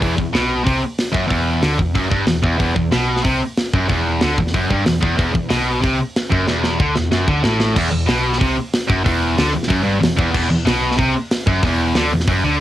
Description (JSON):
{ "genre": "heavy metal", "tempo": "186 BPM", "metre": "4/4", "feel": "straight", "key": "E minor", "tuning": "A4 = 440 Hz", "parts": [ { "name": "high-gain distorted guitar", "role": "riff", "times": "0.0-12.6 s", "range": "E2 to D3", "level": "-17 LUFS", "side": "equal", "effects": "distortion, cassette tape" }, { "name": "hollow-body short-scale picked electric bass", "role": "bass", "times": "0.0-12.6 s", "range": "E1 to D2", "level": "-23 LUFS", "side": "equal", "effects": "none" }, { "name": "tight metal drum kit", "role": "drums", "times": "0.0-12.3 s", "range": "crash cymbal, hi-hat, kick drum, snare drum", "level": "-20 LUFS", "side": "equal", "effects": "none" } ], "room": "light reverb", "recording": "home recording on cassette", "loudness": "-15 LUFS", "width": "side -13 dB against mid", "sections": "0.0-7.8 A section; 7.8-12.6 B section", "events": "drum fill 6.5-7.8", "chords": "0.0 E5" }